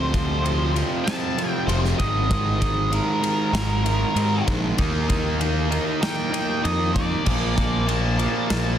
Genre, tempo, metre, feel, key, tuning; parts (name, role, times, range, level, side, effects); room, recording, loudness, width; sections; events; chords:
quiet-loud alternative rock; 97 BPM; 4/4; straight; A4 = 439 Hz
octave-fuzz lead guitar; melody; 0.0-8.8 s; Bb4 to A5; -27 LUFS; equal; distortion
crunchy overdriven guitar; riff; 0.0-8.8 s; F2 to Eb4; -24 LUFS; right 1 dB
fuzz picked electric bass; bass; 0.0-8.8 s; F1 to Ab2; -24 LUFS; equal; overdrive
big rock drum kit; drums; 0.1-8.6 s; crash cymbal, kick drum, ride cymbal, snare drum; -26 LUFS; equal
studio reverb; dense, heavily limited modern master; -20 LUFS; side -10 dB against mid
0.0-8.8 A section
lead electric guitar solo 0.0-8.8
0.0 F; 2.0 Absus2; 4.8 Eb; 7.3 Bbmaj7